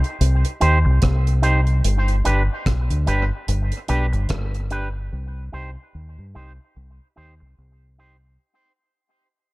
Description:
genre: dub reggae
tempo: 73 BPM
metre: 4/4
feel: swing 58% on 16ths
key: unclear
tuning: A4 = 439 Hz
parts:
  - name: deep reggae drum kit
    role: drums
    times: 0.0-4.9 s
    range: hi-hat, kick drum, rim click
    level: -25 LUFS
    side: equal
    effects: none
  - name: deep dub fingered electric bass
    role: bass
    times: 0.2-8.4 s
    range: G1 to G2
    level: -19 LUFS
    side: equal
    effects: none
  - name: electric guitar with an envelope filter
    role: accompaniment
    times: 0.6-8.2 s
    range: D4 to C5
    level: -25 LUFS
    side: right 2 dB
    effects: dub echo
room: light reverb, small room reverb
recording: dark, warm production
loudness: -18 LUFS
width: side -21 dB against mid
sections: 0.0-8.4 A section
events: fade-out 0.0-8.4; break 5.1-8.4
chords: 0.0 Cm; 1.8 G; 5.1 Cm

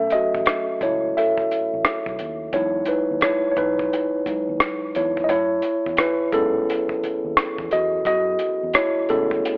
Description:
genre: R&B, neo-soul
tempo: 87 BPM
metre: 4/4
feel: swing 62% on 16ths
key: F# dorian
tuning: A4 = 444 Hz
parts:
  - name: mellow tine electric piano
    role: accompaniment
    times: 0.0-9.6 s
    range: F#3 to E5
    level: -23 LUFS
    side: equal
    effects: none
  - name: vintage muted fingered electric bass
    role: bass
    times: 0.0-9.4 s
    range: A1 to G#2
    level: -40 LUFS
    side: equal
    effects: none
  - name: warm soul drum kit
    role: drums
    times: 0.1-9.6 s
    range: hi-hat, kick drum, rim click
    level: -26 LUFS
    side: equal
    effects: none
room: light reverb, small room ambience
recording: worn, warbling old tape, cassette tape, warbly pitch drift, telephone sound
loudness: -22 LUFS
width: mono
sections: 0.0-9.6 A section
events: tine electric piano solo 0.0-9.6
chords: 0.0 B9sus4 (rootless); 2.5 Emaj9; 5.3 F#m11

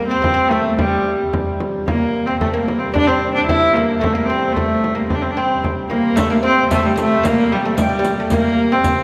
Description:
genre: medieval dance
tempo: 112 BPM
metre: 2/4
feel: straight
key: unclear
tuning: A4 = 440 Hz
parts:
  - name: clear viola da gamba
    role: melody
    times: 0.0-9.0 s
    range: G3 to E4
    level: -20 LUFS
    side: equal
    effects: none
  - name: oud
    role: second line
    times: 0.0-9.0 s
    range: G3 to E4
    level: -23 LUFS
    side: equal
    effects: none
  - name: hand-pumped harmonium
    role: drone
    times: 0.0-9.0 s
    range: C3 to G3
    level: -29 LUFS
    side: equal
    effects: none
  - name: frame drum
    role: percussion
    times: 0.2-9.0 s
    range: none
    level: -26 LUFS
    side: equal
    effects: none
  - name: riq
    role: percussion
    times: 6.2-9.0 s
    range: none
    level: -29 LUFS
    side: equal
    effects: none
room: wet church reverb, RT60 3.4 s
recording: none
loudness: -17 LUFS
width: mono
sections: 0.0-6.2 A section; 6.2-9.0 A section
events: none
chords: none

